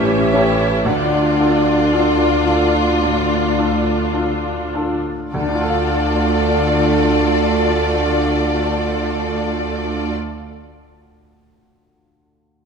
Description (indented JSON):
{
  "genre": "classical",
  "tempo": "48-63 BPM",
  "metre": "4/4",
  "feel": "rubato",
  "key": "D minor",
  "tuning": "A4 = 444 Hz",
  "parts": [
    { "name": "bright baby grand piano", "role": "melody", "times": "0.0-12.7 s", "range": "D2 to F5", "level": "-22 LUFS", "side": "left 3 dB", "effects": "none" },
    { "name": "warm symphonic violin section", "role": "melody", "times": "0.0-10.1 s", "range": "D5 to E5", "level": "-28 LUFS", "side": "left 3 dB", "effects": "none" },
    { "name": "mellow clarinet", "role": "second line", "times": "0.0-10.1 s", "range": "F4 to G4", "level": "-28 LUFS", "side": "left 1 dB", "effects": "none" },
    { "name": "mellow hollow flute section", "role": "second line", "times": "0.0-10.1 s", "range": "C#5 to D5", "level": "-26 LUFS", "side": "left 3 dB", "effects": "none" },
    { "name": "warm symphonic violin section", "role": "second line", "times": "0.0-10.1 s", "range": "C#4 to D5", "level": "-24 LUFS", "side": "left 3 dB", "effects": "none" },
    { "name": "mellow bassoon", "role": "accompaniment", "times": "0.0-10.1 s", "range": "D3 to E3", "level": "-23 LUFS", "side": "right 4 dB", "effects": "none" },
    { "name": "rich symphonic viola section", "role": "accompaniment", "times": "0.0-10.1 s", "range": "A3 to G4", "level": "-24 LUFS", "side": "right 1 dB", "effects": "none" },
    { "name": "mellow French horn section", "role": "sustained chords", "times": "0.0-10.1 s", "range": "D4 to E4", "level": "-26 LUFS", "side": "left 2 dB", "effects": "none" },
    { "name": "clear symphonic cello section", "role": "bass", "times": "0.0-10.1 s", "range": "D2 to A2", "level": "-27 LUFS", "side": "right 4 dB", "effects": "none" },
    { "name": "mellow tuba", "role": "bass", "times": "0.0-10.1 s", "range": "A1 to D2", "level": "-25 LUFS", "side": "right 2 dB", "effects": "none" },
    { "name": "rich symphonic double bass section", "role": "bass", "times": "0.0-10.1 s", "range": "A1 to D2", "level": "-25 LUFS", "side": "right 2 dB", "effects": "none" },
    { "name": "timpani", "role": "percussion", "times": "5.3-10.1 s", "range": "D3", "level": "-33 LUFS", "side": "right 1 dB", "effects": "none" }
  ],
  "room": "wet scoring stage reverb, RT60 2.1 s",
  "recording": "minimal, uncompressed stereo recording",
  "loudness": "-15 LUFS",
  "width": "side -6 dB against mid",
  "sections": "0.0-5.3 A section; 5.3-10.0 B section",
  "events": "slowing down 0.0-5.3",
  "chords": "0.0 A7; 0.9 Dm"
}